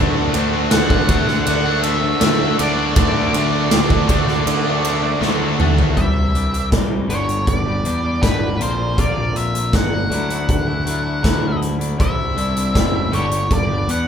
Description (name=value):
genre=quiet-loud alternative rock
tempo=80 BPM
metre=4/4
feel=straight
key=D major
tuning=A4 = 440 Hz
part: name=cranked stack guitar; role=riff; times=0.0-6.0 s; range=D3 to F#4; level=-24 LUFS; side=right 6 dB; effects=overdrive
part: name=heavy high-gain guitar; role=riff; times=0.0-6.0 s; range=D3 to D4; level=-24 LUFS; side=equal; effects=distortion
part: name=scooped high-gain guitar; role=riff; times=0.0-6.0 s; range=D3 to D4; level=-24 LUFS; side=left 7 dB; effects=distortion
part: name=fuzz picked electric bass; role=bass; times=0.0-14.1 s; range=F#1 to E2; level=-22 LUFS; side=equal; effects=overdrive
part: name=big rock drum kit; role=drums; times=0.3-14.1 s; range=hi-hat, kick drum, ride cymbal, snare drum, toms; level=-19 LUFS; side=equal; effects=none
part: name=octave-fuzz lead guitar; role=melody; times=0.7-14.1 s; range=B4 to F#5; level=-23 LUFS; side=right 1 dB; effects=distortion
part: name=twangy electric guitar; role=arpeggios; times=6.0-14.1 s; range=G2 to G4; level=-25 LUFS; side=left 4 dB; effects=none
room=light reverb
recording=band playing live in one room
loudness=-15 LUFS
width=side -8 dB against mid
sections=0.0-6.0 A section; 6.0-14.1 B section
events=drum fill 5.2-6.0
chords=0.0 D; 6.0 Cadd9; 7.1 G; 8.6 Bbadd9; 10.1 Dadd9; 12.0 Cadd9; 13.1 G